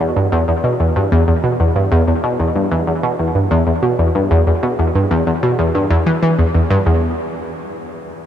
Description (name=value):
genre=ambient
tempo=94 BPM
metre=4/4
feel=straight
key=E minor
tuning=A4 = 439 Hz
part: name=analog pluck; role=solo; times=0.0-7.2 s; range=E2 to E3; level=-14 LUFS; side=equal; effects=chorus, analog delay
room=moderate huge ambient reverb, RT60 8.5 s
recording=none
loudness=-13 LUFS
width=side -10 dB against mid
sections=0.0-6.9 A section; 6.9-8.3 B section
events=none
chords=none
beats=0.48 1.12 | 1.76 2.39 3.03 3.67 | 4.31 4.95 5.59 6.22 | 6.86